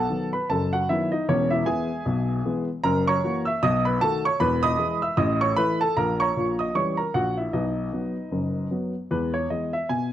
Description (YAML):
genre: jazz, stride piano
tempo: 153 BPM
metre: 4/4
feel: swing 59% on 8ths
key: E major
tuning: A4 = 441 Hz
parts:
  - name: warm baby grand piano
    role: solo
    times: 0.0-10.1 s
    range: E1 to E6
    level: -22 LUFS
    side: equal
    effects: none
room: studio reverb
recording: dry, close 1970s-style studio recording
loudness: -22 LUFS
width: side -11 dB against mid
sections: 0.0-9.1 A section; 9.1-10.1 B section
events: none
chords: 0.0 B7; 1.3 E; 2.8 F#7; 3.6 B7; 4.4 E; 5.2 A; 6.0 A#dim7; 7.5 B; 9.1 E